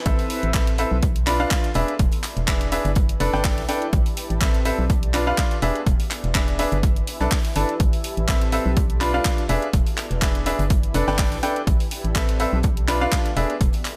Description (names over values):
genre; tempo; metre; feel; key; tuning
piano house; 124 BPM; 4/4; swing 54% on 16ths; A minor; A4 = 440 Hz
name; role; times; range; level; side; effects
bright baby grand piano; riff; 0.1-13.5 s; C4 to B5; -27 LUFS; equal; sidechain pumping, tape echo
organ-like FM bass; bass; 0.1-13.7 s; E1 to B1; -27 LUFS; equal; sidechain pumping, high-pass filter
electronic kick drum; drums; 0.1-13.7 s; none; -24 LUFS; equal; overdrive
garage drum kit; drums; 0.1-14.0 s; handclaps, hi-hat; -31 LUFS; equal; none
gated 80s drum kit; drums; 0.1-14.0 s; hi-hat, snare drum; -41 LUFS; equal; none
granular cloud pad; texture; 0.1-14.0 s; B3 to A5; -37 LUFS; equal; built-in reverb, sidechain pumping
room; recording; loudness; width
little or no reverb; none; -21 LUFS; mono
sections
0.1-14.0 A section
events
drop 0.1-14.0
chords
0.1 Amadd9; 1.0 Bdim; 1.8 E7; 3.0 Gadd9; 3.9 Amadd9; 4.9 Bdim; 5.6 E7; 6.8 Gadd9; 7.8 Amadd9; 8.8 Bdim; 9.5 E7; 10.7 Gadd9; 11.7 Amadd9; 12.6 Bdim; 13.4 E7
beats
| 0.06 0.54 1.03 1.51 | 2.00 2.48 2.96 3.45 | 3.93 4.41 4.90 5.38 | 5.87 6.35 6.83 7.32 | 7.80 8.29 8.77 9.25 | 9.74 10.22 10.70 11.19 | 11.67 12.16 12.64 13.12 | 13.61